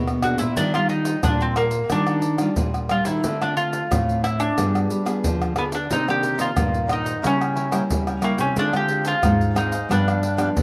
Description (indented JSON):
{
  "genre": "samba and choro",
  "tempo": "90 BPM",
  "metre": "4/4",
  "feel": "straight",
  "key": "unclear",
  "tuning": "A4 = 439 Hz",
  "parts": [
    { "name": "nylon-string guitar", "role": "accompaniment", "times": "0.0-10.6 s", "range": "G2 to G#4", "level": "-30 LUFS", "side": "equal", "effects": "slapback echo" },
    { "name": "nylon-string guitar", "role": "bass", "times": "0.0-10.6 s", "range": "G2 to G3", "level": "-27 LUFS", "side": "equal", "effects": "none" },
    { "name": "tube shaker, pandeiro, tamborim and surdo", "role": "percussion", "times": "0.1-10.6 s", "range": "none", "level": "-28 LUFS", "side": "equal", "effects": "none" },
    { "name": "mandolin", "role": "melody", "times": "0.2-10.6 s", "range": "Bb3 to G4", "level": "-26 LUFS", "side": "equal", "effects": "none" },
    { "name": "cavaquinho", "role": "accompaniment", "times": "5.9-10.5 s", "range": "D4 to G5", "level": "-33 LUFS", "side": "equal", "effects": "slapback echo" }
  ],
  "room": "little or no reverb",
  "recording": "recorded outdoors, with no room sound",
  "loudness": "-22 LUFS",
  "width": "mono",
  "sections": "0.0-10.6 A section",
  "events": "none",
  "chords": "0.0 E7#11; 0.6 Ebmaj9; 3.2 Dm7; 4.6 G7b9; 5.9 Cm9; 7.2 C#dim7; 8.6 Dm7b5; 9.9 G7",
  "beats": "| 0.58 1.25 1.91 2.58 | 3.25 3.91 4.58 5.24 | 5.91 6.57 7.24 7.90 | 8.57 9.23 9.90 10.56"
}